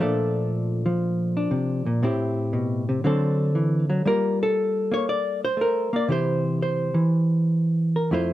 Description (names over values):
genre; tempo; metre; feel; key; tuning
solo jazz; 118 BPM; 4/4; swing 69% on 8ths; unclear; A4 = 440 Hz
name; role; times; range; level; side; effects
hollow-body jazz guitar; solo; 0.0-8.3 s; F2 to D5; -21 LUFS; equal; none
room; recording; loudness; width
moderate studio reverb, RT60 0.6 s; none; -21 LUFS; side -14 dB against mid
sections
0.0-8.3 A section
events
none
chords
0.0 Bbmaj7; 2.0 Am7; 3.0 D7; 4.1 Gm9; 6.1 C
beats
0.50 1.01 1.51 | 2.02 2.53 3.04 3.54 | 4.05 4.56 5.07 5.57 | 6.08 6.59 7.09 7.60 | 8.11